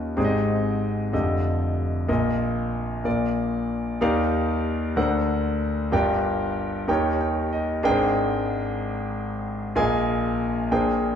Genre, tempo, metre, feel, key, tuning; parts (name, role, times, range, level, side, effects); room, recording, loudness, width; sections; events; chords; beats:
gospel; 63 BPM (dotted quarters); 6/8; straight; Eb major; A4 = 441 Hz
clear grand piano; solo; 0.0-11.2 s; F1 to Ab5; -22 LUFS; equal
wet large studio reverb, RT60 1.3 s; band playing live in one room; -22 LUFS; side -8 dB against mid
0.0-4.0 A section; 4.0-11.2 B section
grand piano fill 6.9-7.8
0.2 Abmaj7; 1.1 F13; 2.1 Bbsus4; 3.1 Bb; 4.0 Ebmaj9; 5.0 D7b13; 5.9 Gm7; 6.9 Eb7; 7.8 Abmaj9#11; 9.8 Bb7sus4
| 0.17 1.13 | 2.09 3.05 | 4.01 4.97 | 5.93 6.89 | 7.84 8.80 | 9.76 10.71